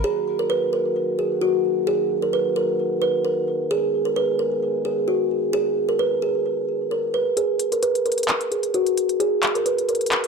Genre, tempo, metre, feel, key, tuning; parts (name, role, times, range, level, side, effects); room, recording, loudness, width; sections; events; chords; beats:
hip hop, trap; 131 BPM; 4/4; half-time; Eb minor; A4 = 439 Hz
kalimba; melody; 0.0-10.1 s; Gb4 to Cb5; -20 LUFS; right 1 dB; low-pass filter, ping-pong delay
dark French horn section; sustained chords; 0.0-7.3 s; Eb3 to Ab4; -30 LUFS; equal
trap drum kit; drums; 7.4-10.3 s; handclaps, hi-hat; -24 LUFS; left 1 dB
moderate digital room reverb, RT60 1.0 s, small room ambience; dark, warm production; -20 LUFS; side -5 dB against mid
0.0-7.4 A section; 7.4-10.3 B section
kick muted 7.4-10.3
0.0 Ebm; 3.7 Abm; 7.4 N.C.
| 0.04 0.50 0.96 1.42 | 1.87 2.33 2.79 3.25 | 3.71 4.16 4.62 5.08 | 5.54 6.00 6.45 6.91 | 7.37 7.83 8.29 8.74 | 9.20 9.66 10.12